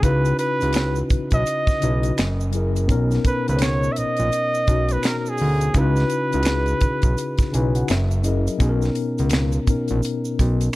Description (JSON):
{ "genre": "R&B, neo-soul", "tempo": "84 BPM", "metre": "4/4", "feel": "swing 61% on 16ths", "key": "B major", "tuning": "A4 = 439 Hz", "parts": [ { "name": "warm flugelhorn", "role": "melody", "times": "0.0-7.9 s", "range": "G#4 to E5", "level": "-24 LUFS", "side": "right 1 dB", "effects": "none" }, { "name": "mellow tine electric piano", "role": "accompaniment", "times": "0.0-10.8 s", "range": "B2 to G#5", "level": "-24 LUFS", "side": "left 3 dB", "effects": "medium stereo tremolo" }, { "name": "fat analog bass", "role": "bass", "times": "0.0-10.7 s", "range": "F#1 to D2", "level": "-21 LUFS", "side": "equal", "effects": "none" }, { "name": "tight funk drum kit", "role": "drums", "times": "0.0-10.7 s", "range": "finger snaps, hi-hat, kick drum, snare drum", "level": "-22 LUFS", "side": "equal", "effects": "none" }, { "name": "tube shaker and finger snaps", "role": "percussion", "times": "0.0-10.8 s", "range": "none", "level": "-36 LUFS", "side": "right 6 dB", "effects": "none" } ], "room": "small room ambience", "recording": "dark, warm production", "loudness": "-18 LUFS", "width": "side -18 dB against mid", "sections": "0.0-8.6 A section; 8.6-10.8 B section", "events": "tine electric piano fill 7.2-8.6", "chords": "0.0 C#m11; 2.2 F#9; 2.9 Bmaj9; 5.7 C#m11; 7.9 F#9; 8.6 Bmaj9", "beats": "| 0.04 0.75 1.46 2.18 | 2.89 3.61 4.32 5.04 | 5.75 6.46 7.18 7.89 | 8.61 9.32 10.04 10.75" }